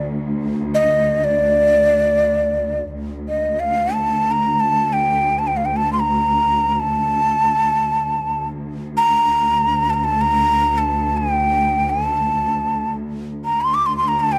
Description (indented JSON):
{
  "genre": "Turkish makam ensemble",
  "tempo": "free time",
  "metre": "none",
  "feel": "none",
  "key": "unclear",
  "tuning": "A4 = 440 Hz",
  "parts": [
    { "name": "breathy ney", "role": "melody", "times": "0.0-14.4 s", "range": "D5 to D6", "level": "-19 LUFS", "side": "equal", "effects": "none" },
    { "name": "rich studio cello section", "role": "drone", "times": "0.0-14.4 s", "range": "D2", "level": "-26 LUFS", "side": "equal", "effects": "none" }
  ],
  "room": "light reverb",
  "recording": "close, detailed microphones",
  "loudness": "-18 LUFS",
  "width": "mono",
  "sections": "0.0-2.9 A section; 2.9-14.4 A section",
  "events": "none",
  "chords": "none",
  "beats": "free time"
}